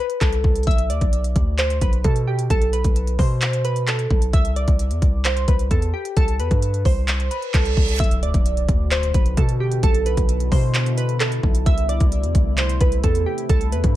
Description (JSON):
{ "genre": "hip hop, trap", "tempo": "131 BPM", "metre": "4/4", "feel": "half-time", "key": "B phrygian", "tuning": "A4 = 440 Hz", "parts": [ { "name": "glassy digital keys", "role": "melody", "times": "0.0-14.0 s", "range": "G4 to E5", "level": "-25 LUFS", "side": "right 1 dB", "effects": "chorus" }, { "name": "trap drum kit", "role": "drums", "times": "0.1-13.9 s", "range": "handclaps, hi-hat, kick drum", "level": "-20 LUFS", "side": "equal", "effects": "overdrive" }, { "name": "hard-hitting 808-style bass", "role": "bass", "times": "0.2-14.0 s", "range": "B1 to B2", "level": "-21 LUFS", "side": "equal", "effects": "none" }, { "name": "reverse cymbal and impact", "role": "sound effects", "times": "7.3-9.8 s", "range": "none", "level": "-32 LUFS", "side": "right 1 dB", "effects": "none" }, { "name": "deep dark ambient pad", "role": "sustained chords", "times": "8.4-14.0 s", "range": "B2 to F#4", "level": "-30 LUFS", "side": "equal", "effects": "chorus, built-in reverb" } ], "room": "digital ambience", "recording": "none", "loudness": "-17 LUFS", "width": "side -14 dB against mid", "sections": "0.0-8.0 A section; 8.0-14.0 B section", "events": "reverse cymbal 7.3-8.0; impact 8.0-9.8", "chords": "0.0 C5; 0.7 Bm; 4.3 C5; 8.0 Bm; 11.7 C6", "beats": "0.21 | 0.67 1.13 1.59 2.04 | 2.50 2.96 3.42 3.88 | 4.33 4.79 5.25 5.71 | 6.17 6.62 7.08 7.54 | 8.00 8.46 8.91 9.37 | 9.83 10.29 10.75 11.21 | 11.66 12.12 12.58 13.04 | 13.49 13.95" }